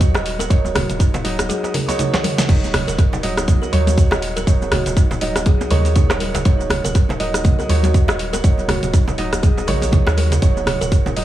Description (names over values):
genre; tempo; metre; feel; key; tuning
afro house; 121 BPM; 4/4; swing 57% on 16ths; Eb minor; A4 = 440 Hz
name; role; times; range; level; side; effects
felt-muted upright piano; stabs; 0.0-11.2 s; Gb3 to Eb5; -24 LUFS; right 4 dB; sidechain pumping, dub echo
round analog bass; bass; 0.0-11.2 s; Eb1 to Eb2; -22 LUFS; equal; sidechain pumping
electronic kick drum; drums; 0.0-11.0 s; none; -14 LUFS; equal; none
house drum kit; drums; 0.0-11.2 s; crash cymbal, hi-hat, rim click, shaker, snare drum, toms; -23 LUFS; equal; dub echo
congas; percussion; 0.0-11.1 s; none; -27 LUFS; left 1 dB; dub echo
kalimba; arpeggios; 0.1-11.2 s; Eb4 to Eb5; -26 LUFS; left 2 dB; sidechain pumping, tape echo
djembe; percussion; 0.1-11.1 s; none; -28 LUFS; right 3 dB; none
room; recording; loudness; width
studio ambience; echo-heavy mix, small room ambience; -15 LUFS; side -13 dB against mid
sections
0.0-11.2 A section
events
drum fill 2.1-2.5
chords
0.0 Ebm7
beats
0.01 | 0.50 1.00 1.50 1.99 | 2.49 2.98 3.48 3.98 | 4.47 4.97 5.46 5.96 | 6.45 6.95 7.45 7.94 | 8.44 8.93 9.43 9.93 | 10.42 10.92